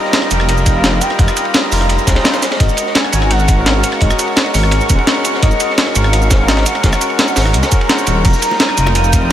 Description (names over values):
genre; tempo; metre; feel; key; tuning
liquid drum and bass; 170 BPM; 4/4; straight; unclear; A4 = 440 Hz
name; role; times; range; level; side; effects
warm velvety synth lead; melody; 0.0-9.3 s; Eb5 to Bb5; -22 LUFS; equal; chorus, analog delay
overdriven tine electric piano; accompaniment; 0.0-9.3 s; G3 to C5; -20 LUFS; equal; ping-pong delay
lush unison pad; sustained chords; 0.0-9.3 s; Gb4 to Eb6; -21 LUFS; equal; chorus
crunchy breakbeat drum kit; drums; 0.0-9.3 s; ride cymbal, snare drum; -22 LUFS; equal; high-pass filter on cymbals, high-pass filter on snare, high-pass filter on room
breakbeat sampler-style drum kit; drums; 0.1-9.2 s; cabasa, crash cymbal, hi-hat, rim click, snare drum; -16 LUFS; equal; none
swelling detuned saw bass; bass; 0.3-9.3 s; Eb1 to Db2; -15 LUFS; equal; tube saturation
electronic kick drum; drums; 0.7-9.2 s; none; -14 LUFS; equal; none
bongos; percussion; 8.5-8.9 s; none; -29 LUFS; left 1 dB; none
room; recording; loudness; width
light reverb; none; -11 LUFS; side -11 dB against mid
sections
0.0-9.3 A section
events
none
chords
0.0 F9sus4; 2.4 Ab9sus4; 8.2 F9sus4